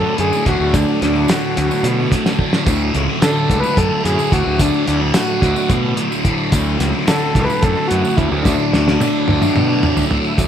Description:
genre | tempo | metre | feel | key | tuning
psychedelic rock | 218 BPM (eighths) | 7/8 | straight | D major | A4 = 440 Hz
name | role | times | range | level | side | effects
combo organ | melody | 0.0-10.1 s | D4 to B4 | -20 LUFS | equal | analog delay
tonewheel organ | sustained chords | 0.0-10.5 s | F#3 to A4 | -29 LUFS | right 6 dB | none
thick fuzz guitar | riff | 0.0-10.5 s | D2 to D3 | -19 LUFS | left 1 dB | distortion, phaser
fuzz fingered electric bass | bass | 0.0-10.5 s | C#2 to D3 | -20 LUFS | equal | overdrive
cloth-damped thuddy drum kit | drums | 0.2-10.5 s | hi-hat, kick drum, snare drum, toms | -18 LUFS | equal | none
tambourine | percussion | 0.2-10.5 s | none | -36 LUFS | right 11 dB | none
room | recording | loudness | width
light reverb, studio ambience | none | -14 LUFS | side -9 dB against mid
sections
0.0-10.4 A section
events
drum fill 2.3-2.7, 8.5-10.4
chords
0.0 D

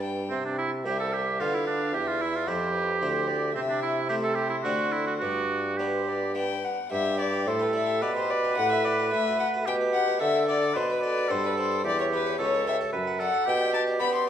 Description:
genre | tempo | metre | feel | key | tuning
classical, baroque-style sonata movement with continuo | 110 BPM | 3/4 | rubato | C major, G major from 3.5 s | A4 = 441 Hz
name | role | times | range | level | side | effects
warm violin | melody | 0.0-14.3 s | B4 to C6 | -29 LUFS | left 5 dB | none
harpsichord | accompaniment | 0.0-14.3 s | C2 to F#5 | -32 LUFS | equal | none
warm bassoon | bass | 0.0-14.3 s | C2 to B3 | -30 LUFS | right 1 dB | none
warm oboe | second line | 0.3-14.2 s | C4 to B4 | -29 LUFS | right 4 dB | none
room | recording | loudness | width
wet recital hall reverb, RT60 1.5 s | dark, warm production | -24 LUFS | side -9 dB against mid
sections
0.0-6.9 A section; 6.9-14.3 B section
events
none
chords
0.3 C; 1.4 Bdim/D; 1.9 C/E; 3.5 Am/C; 4.6 D7; 5.2 G; 8.6 D69/A; 9.7 G/B; 10.2 D5; 11.8 C#dim/E; 12.9 D/F#; 13.5 G/B

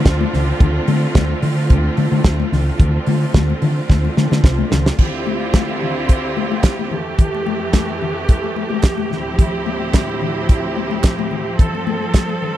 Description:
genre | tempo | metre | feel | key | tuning
disco | 109 BPM | 4/4 | straight | D minor | A4 = 442 Hz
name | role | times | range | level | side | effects
bright studio string section | sustained chords | 0.0-12.6 s | D2 to A4 | -22 LUFS | right 2 dB | none
hollow-body short-scale fingered electric bass | bass | 0.1-4.9 s | C2 to D3 | -17 LUFS | equal | none
damped 70s drum kit | drums | 0.1-12.3 s | crash cymbal, hi-hat, kick drum, snare drum | -13 LUFS | equal | none
congas | percussion | 0.1-12.6 s | none | -24 LUFS | left 10 dB | none
group handclap | percussion | 5.5-12.3 s | none | -32 LUFS | right 12 dB | none
room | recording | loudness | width
studio reverb | dry, close 1970s-style studio recording | -15 LUFS | side -13 dB against mid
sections
0.0-5.0 A section; 5.0-12.6 B section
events
drum fill 3.9-5.0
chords
0.0 Dm7; 5.0 Dm11; 6.9 Fmaj9; 9.1 Dm11; 11.6 G9sus4

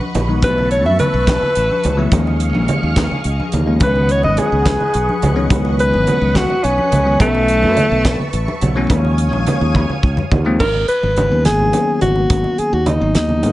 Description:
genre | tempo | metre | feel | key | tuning
electric jazz fusion | 71 BPM (dotted quarters) | 6/8 | straight | G# minor | A4 = 440 Hz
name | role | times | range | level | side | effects
mellow alto saxophone | melody | 0.0-13.5 s | A3 to E5 | -17 LUFS | equal | none
ensemble organ-string | sustained chords | 0.0-10.6 s | G#4 to D#6 | -26 LUFS | equal | phaser, ensemble chorus
congas | percussion | 0.0-13.5 s | none | -23 LUFS | right 1 dB | none
modern bright fingered electric bass | bass | 0.1-13.5 s | G#1 to G#2 | -18 LUFS | equal | none
damped 70s drum kit | drums | 0.1-13.5 s | crash cymbal, hi-hat, kick drum, snare drum, toms | -18 LUFS | equal | none
bell-like tine electric piano | accompaniment | 0.3-13.5 s | D#3 to E4 | -20 LUFS | left 2 dB | wide subtle chorus
room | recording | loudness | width
light reverb, small room ambience | nothing above 10.6 kHz | -13 LUFS | side -16 dB against mid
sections
0.0-10.6 A section; 10.6-13.5 B section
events
alto saxophone solo 0.0-10.6; drum fill 9.8-10.6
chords
0.4 B9sus4; 2.1 D#9sus4; 3.8 C#9sus4; 7.2 B9sus4; 8.9 D#9sus4; 10.6 G#m11

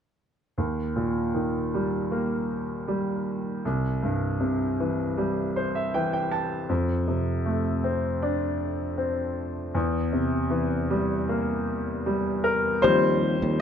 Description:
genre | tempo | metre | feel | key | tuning
pop ballad | 79 BPM | 4/4 | straight | unclear | A4 = 440 Hz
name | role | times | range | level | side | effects
clear concert grand piano | accompaniment | 0.6-13.6 s | C2 to A5 | -24 LUFS | equal | none
sustaining fretless electric bass | bass | 12.8-13.6 s | Eb2 | -25 LUFS | right 1 dB | none
room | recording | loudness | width
light reverb | band playing live in one room | -24 LUFS | side -8 dB against mid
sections
0.6-12.8 A section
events
grand piano fill 5.2-6.7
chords
0.6 Eb; 3.7 C; 6.7 F6; 9.7 C7/E; 12.8 Eb6

